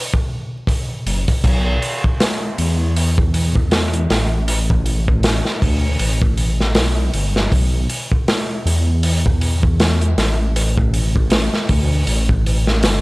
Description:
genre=trip hop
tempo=79 BPM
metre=4/4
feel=swing 57% on 16ths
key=unclear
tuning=A4 = 440 Hz
part: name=crunchy breakbeat drum kit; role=drums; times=0.1-13.0 s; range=crash cymbal, hi-hat, kick drum, snare drum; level=-17 LUFS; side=equal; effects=none
part: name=dark detuned saw bass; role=bass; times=1.1-13.0 s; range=F#1 to E2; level=-17 LUFS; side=equal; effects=none
room=little or no reverb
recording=vinyl crackle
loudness=-15 LUFS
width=side -23 dB against mid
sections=0.0-1.4 A section; 1.4-13.0 B section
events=none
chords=none

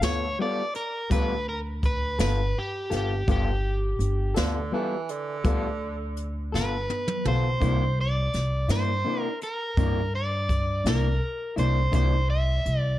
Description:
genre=slow blues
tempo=55 BPM (dotted quarters)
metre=12/8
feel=straight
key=G mixolydian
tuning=A4 = 438 Hz
part: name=crunchy overdriven guitar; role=melody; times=0.0-13.0 s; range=G4 to E5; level=-29 LUFS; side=equal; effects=spring reverb
part: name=electric guitar through a small old amp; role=accompaniment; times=0.0-12.1 s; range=C3 to A4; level=-30 LUFS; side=left 3 dB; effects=harmonic tremolo
part: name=upright bass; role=bass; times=0.0-13.0 s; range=G1 to G2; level=-26 LUFS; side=equal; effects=none
part: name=jazz brush drum kit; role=drums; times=0.0-12.8 s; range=hi-hat, kick drum, snare drum, toms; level=-28 LUFS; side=equal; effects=none
part: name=warm tenor saxophone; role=second line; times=4.4-6.3 s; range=D3 to E3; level=-32 LUFS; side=right 4 dB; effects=tape echo
room=little or no reverb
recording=dark, warm production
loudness=-24 LUFS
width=side -14 dB against mid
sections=0.0-13.0 A section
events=drum fill 6.5-7.6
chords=0.0 G9; 7.6 C9

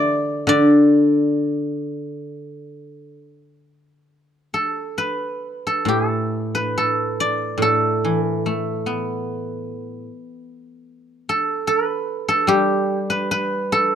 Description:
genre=chinese traditional, Chinese solo plucked strings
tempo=63-75 BPM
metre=4/4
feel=rubato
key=D zhi mode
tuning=A4 = 440 Hz
part: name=guzheng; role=solo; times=0.0-13.9 s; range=A2 to E5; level=-18 LUFS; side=equal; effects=none
room=small room ambience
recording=dry, close 1970s-style studio recording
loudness=-18 LUFS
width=side -9 dB against mid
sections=0.0-4.1 A section; 4.1-13.9 B section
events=none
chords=none

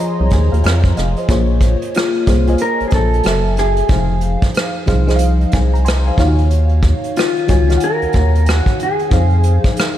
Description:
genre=R&B, neo-soul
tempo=92 BPM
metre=4/4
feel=swing 63% on 16ths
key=unclear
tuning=A4 = 438 Hz
part: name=FM electric piano with soft pad layer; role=accompaniment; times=0.0-10.0 s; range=Eb3 to C6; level=-20 LUFS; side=left 1 dB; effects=chorus
part: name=rubbery square bass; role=bass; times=0.2-9.6 s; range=F1 to F2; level=-14 LUFS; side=equal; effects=none
part: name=vintage brush drum kit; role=drums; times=0.3-10.0 s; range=hi-hat, kick drum, rim click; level=-18 LUFS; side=equal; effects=none
part: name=mellow electric guitar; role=melody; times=2.0-10.0 s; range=F4 to Bb4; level=-19 LUFS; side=left 2 dB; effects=wide subtle chorus
room=light reverb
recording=none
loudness=-12 LUFS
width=side -12 dB against mid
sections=0.0-10.0 A section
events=FM electric piano fill 0.0-1.3, 5.5-6.5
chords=0.0 Fm7; 1.3 Bbm9; 3.2 Gbm7; 3.9 Fm7; 6.2 Ebm9; 9.1 Fm7

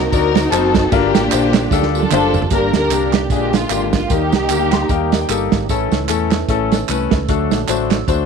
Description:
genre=uptempo gospel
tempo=151 BPM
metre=4/4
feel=swing 57% on 8ths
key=unclear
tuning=A4 = 439 Hz
part: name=dark studio string section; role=melody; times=0.0-5.3 s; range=Ab3 to Bb4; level=-19 LUFS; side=left 2 dB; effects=none
part: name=tonewheel organ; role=sustained chords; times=0.0-8.3 s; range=D3 to A4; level=-24 LUFS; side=right 12 dB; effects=slow rotary speaker, overdrive, chorus vibrato
part: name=fingered electric bass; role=bass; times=0.0-8.3 s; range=F#1 to E2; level=-22 LUFS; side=equal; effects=none
part: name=clear baby grand piano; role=accompaniment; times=0.1-8.3 s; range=G2 to C6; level=-20 LUFS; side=left 14 dB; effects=none
part: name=warm soul drum kit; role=drums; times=0.1-8.2 s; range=hi-hat, kick drum, ride cymbal, snare drum, toms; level=-18 LUFS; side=right 6 dB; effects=none
part: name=tambourine and handclaps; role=percussion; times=0.1-8.2 s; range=none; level=-27 LUFS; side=right 16 dB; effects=none
room=light reverb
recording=1960s-style stereo with parts hard left and right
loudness=-14 LUFS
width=side -6 dB against mid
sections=0.0-2.5 A section; 2.5-8.3 B section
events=drum fill 1.7-2.5; grand piano fill 4.5-5.7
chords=0.0 D7b9b13; 0.9 Gm7; 2.5 Gm; 3.3 Bb7; 4.1 Eb; 5.7 A; 7.3 D

